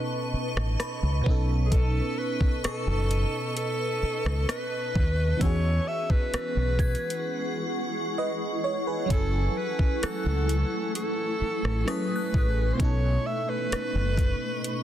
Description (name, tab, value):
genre	contemporary R&B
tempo	65 BPM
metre	4/4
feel	straight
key	unclear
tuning	A4 = 441 Hz
part	breathy alto saxophone	melody	0.0-14.8 s	G#4 to E5	-32 LUFS	equal	tape echo
part	FM electric piano	accompaniment	0.0-14.8 s	B2 to G#5	-33 LUFS	right 2 dB	chorus, phaser
part	granular cloud pad	sustained chords	0.0-14.8 s	A3 to C#6	-33 LUFS	equal	built-in reverb
part	glassy synth bell	texture	0.0-13.5 s	B5 to G#6	-43 LUFS	left 3 dB	chorus, tape echo
part	deep dub fingered electric bass	bass	0.3-14.3 s	F#1 to E2	-26 LUFS	equal	none
part	smooth R&B drum kit	drums	0.6-14.8 s	hi-hat, kick drum, rim click	-27 LUFS	equal	soft clipping on snare
room	little or no reverb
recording	dense, heavily limited modern master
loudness	-24 LUFS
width	side -11 dB against mid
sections	0.0-14.8 A section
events	break 7.3-9.1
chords	0.0 B9; 5.4 E69; 9.1 F#m7; 12.8 B9